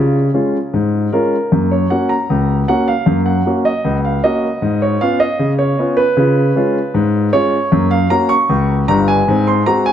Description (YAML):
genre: ragtime piano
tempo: 77 BPM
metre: 2/4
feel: straight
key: F# major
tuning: A4 = 440 Hz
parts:
  - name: warm concert grand piano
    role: solo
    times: 0.0-9.9 s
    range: G1 to C#6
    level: -12 LUFS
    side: equal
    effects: analog delay
room: moderate spring reverb, RT60 1.9 s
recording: dark, warm production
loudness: -12 LUFS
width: side -10 dB against mid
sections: 0.0-1.5 A section; 1.5-9.9 B section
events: none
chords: 0.0 C#; 1.5 F#; 4.6 C#7/G#; 6.2 C#7; 7.7 F#; 9.3 G#7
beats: 0.73 | 1.52 2.30 | 3.08 3.86 | 4.63 5.41 | 6.18 6.96 | 7.73 8.51 | 9.28